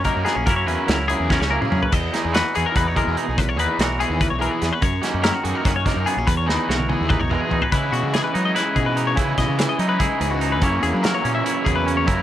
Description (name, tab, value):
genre	math rock and midwest emo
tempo	290 BPM (eighths)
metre	7/8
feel	straight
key	unclear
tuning	A4 = 440 Hz
part	twangy electric guitar	accompaniment	0.0-12.2 s	E2 to F#4	-25 LUFS	right 5 dB	none
part	twelve-string electric guitar	arpeggios	0.0-12.2 s	F#4 to E5	-24 LUFS	left 6 dB	analog delay
part	fuzz fingered electric bass	bass	0.0-12.2 s	A#1 to F#3	-25 LUFS	equal	overdrive
part	loose indie drum kit	drums	0.0-12.2 s	crash cymbal, hi-hat, kick drum, snare drum, toms	-23 LUFS	equal	none
part	raw garage guitar	riff	0.1-12.2 s	F#2 to A#4	-26 LUFS	equal	overdrive
room	light reverb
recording	dark, warm production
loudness	-18 LUFS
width	side -12 dB against mid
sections	0.0-7.7 A section; 7.7-12.2 B section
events	drum fill 1.3-1.9, 6.5-7.7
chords	0.5 F#7; 1.9 Emaj9; 4.8 D#m7/F#; 6.3 Emaj9#11; 7.7 C#m9; 10.6 F#9